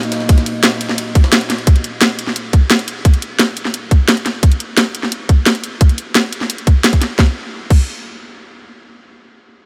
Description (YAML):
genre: dark technical drum and bass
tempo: 174 BPM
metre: 4/4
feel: straight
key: Eb minor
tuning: A4 = 440 Hz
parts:
  - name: dark analog pad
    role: sustained chords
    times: 0.0-4.4 s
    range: Bb3 to Eb5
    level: -29 LUFS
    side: equal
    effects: lush chorus, sidechain pumping
  - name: drum and bass drum kit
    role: drums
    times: 0.0-7.8 s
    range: crash cymbal, hi-hat, snare drum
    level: -18 LUFS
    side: equal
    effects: overdrive
  - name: jungle sampler-style drum kit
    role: drums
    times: 0.1-1.7 s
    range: ride cymbal, snare drum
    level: -29 LUFS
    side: equal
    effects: none
  - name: electronic kick drum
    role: drums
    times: 0.3-7.8 s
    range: none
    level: -12 LUFS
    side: equal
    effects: overdrive
room: light reverb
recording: none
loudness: -14 LUFS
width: mono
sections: 0.0-7.2 A section; 7.2-9.7 B section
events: none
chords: 0.0 Ebm; 7.2 N.C.